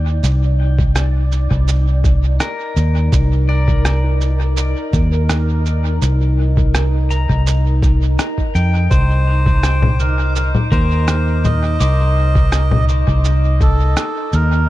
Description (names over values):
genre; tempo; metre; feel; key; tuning
ambient dub; 83 BPM; 4/4; straight; C minor; A4 = 440 Hz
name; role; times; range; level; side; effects
pedal steel guitar; arpeggios; 0.0-14.7 s; Bb4 to D6; -30 LUFS; left 3 dB; tape echo
fingered electric bass; bass; 0.0-14.7 s; C2 to F2; -14 LUFS; equal; none
bubbling stepped-filter texture; texture; 0.0-14.7 s; Eb4 to D6; -26 LUFS; equal; chorus, built-in reverb
electronic cabasa, rim click and congas; drums; 0.2-14.5 s; none; -22 LUFS; left 1 dB; dub echo
electronic kick drum; drums; 0.8-13.8 s; none; -17 LUFS; equal; none
melodica; melody; 8.9-14.7 s; A4 to Eb5; -22 LUFS; equal; tape echo
room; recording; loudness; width
digital ambience; dark, warm production; -13 LUFS; side -16 dB against mid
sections
0.0-14.7 A section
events
none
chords
0.0 Cm7